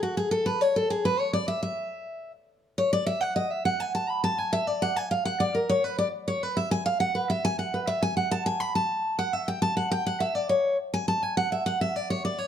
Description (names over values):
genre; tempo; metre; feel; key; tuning
bluegrass; 206 BPM; 4/4; straight; unclear; A4 = 440 Hz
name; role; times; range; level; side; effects
picked steel-string acoustic guitar; solo; 0.0-12.5 s; F#4 to B5; -24 LUFS; equal; none
room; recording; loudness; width
moderate studio reverb, RT60 0.9 s; dark, warm production; -24 LUFS; side -9 dB against mid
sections
0.0-4.1 A section; 4.1-12.5 A section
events
steel-string acoustic guitar solo 0.0-12.5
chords
none